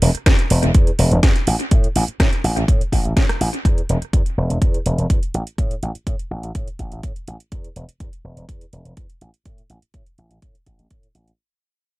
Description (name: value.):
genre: filtered disco house.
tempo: 124 BPM.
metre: 4/4.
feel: straight.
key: unclear.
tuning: A4 = 445 Hz.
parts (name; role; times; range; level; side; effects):
slap bass with an envelope filter; bass; 0.0-11.3 s; E1 to A2; -20 LUFS; equal; sidechain pumping, low-pass filter.
house drum kit; drums; 0.0-11.4 s; hi-hat, rim click, snare drum; -24 LUFS; right 1 dB; sidechain pumping on hats, analog delay.
electronic kick drum; drums; 0.3-11.0 s; none; -17 LUFS; equal; none.
room: little or no reverb.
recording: echo-heavy mix.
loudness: -16 LUFS.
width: side -19 dB against mid.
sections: 0.0-11.4 A section.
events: fade-out 0.0-11.4; filter sweep on slap bass 0.0-11.4.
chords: none.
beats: 0.26 0.74 1.23 | 1.71 2.19 2.68 3.16 | 3.65 4.13 4.61 5.10 | 5.58 6.07 6.55 7.03 | 7.52 8.00 8.48 8.97 | 9.45 9.94 10.42 10.90.